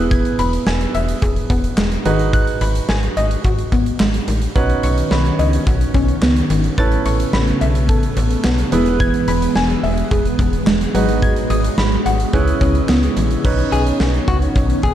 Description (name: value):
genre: synth-pop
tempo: 108 BPM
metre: 4/4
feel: straight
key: unclear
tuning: A4 = 440 Hz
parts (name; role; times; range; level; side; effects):
- warm grand piano; accompaniment; 0.0-14.9 s; B3 to B4; -22 LUFS; right 4 dB; none
- soft round pluck; arpeggios; 0.0-13.4 s; D#3 to A6; -22 LUFS; left 2 dB; chorus, slapback echo
- slap-like FM bass; bass; 0.0-14.9 s; E1 to C#2; -19 LUFS; equal; none
- huge arena drum kit; drums; 0.1-14.9 s; crash cymbal, handclaps, hi-hat, kick drum, snare drum; -20 LUFS; equal; none
- ensemble organ-string; sustained chords; 4.6-14.9 s; C#3 to D#5; -22 LUFS; left 1 dB; ensemble chorus
- clean electric guitar; second line; 13.7-14.9 s; F#4 to G#4; -23 LUFS; left 5 dB; spring reverb, slapback echo
room: moderate recital hall reverb, RT60 1.5 s, studio ambience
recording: dark, warm production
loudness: -14 LUFS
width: side -11 dB against mid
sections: 0.0-13.4 A section; 13.4-14.9 B section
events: none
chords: 0.0 E; 2.1 G#m7; 4.6 Badd9; 6.8 Aadd9; 8.7 E; 10.9 G#m7; 12.3 C#m7; 13.4 Badd9